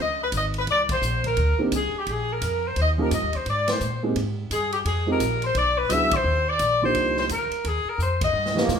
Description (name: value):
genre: jazz, big band swing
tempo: 172 BPM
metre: 4/4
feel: swing 62% on 8ths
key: Eb major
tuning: A4 = 441 Hz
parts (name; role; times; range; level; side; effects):
- bright saxophone section; melody; 0.0-8.7 s; G4 to E5; -23 LUFS; left 2 dB; none
- upright bass; bass; 0.0-8.8 s; Ab1 to B2; -27 LUFS; equal; none
- swinging big-band drum kit; drums; 0.3-8.8 s; hi-hat, kick drum, ride cymbal, snare drum; -32 LUFS; equal; none
- dark upright piano; accompaniment; 1.6-8.7 s; Eb3 to G#4; -26 LUFS; right 3 dB; none
- brilliant trombone section; second line; 8.6-8.8 s; B2 to A#3; -26 LUFS; right 6 dB; none
room: moderate large studio reverb, RT60 0.8 s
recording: band playing live in one room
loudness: -21 LUFS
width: side -7 dB against mid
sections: 0.0-8.8 A section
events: band accent 0.8, 3.6, 6.1, 8.2; drum fill 8.0-8.7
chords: 0.0 Db5; 0.7 C7sus2; 2.1 Bb5; 2.8 Eb7; 3.5 Abmaj9; 4.9 Fm7; 5.6 E9; 6.3 Ebmaj7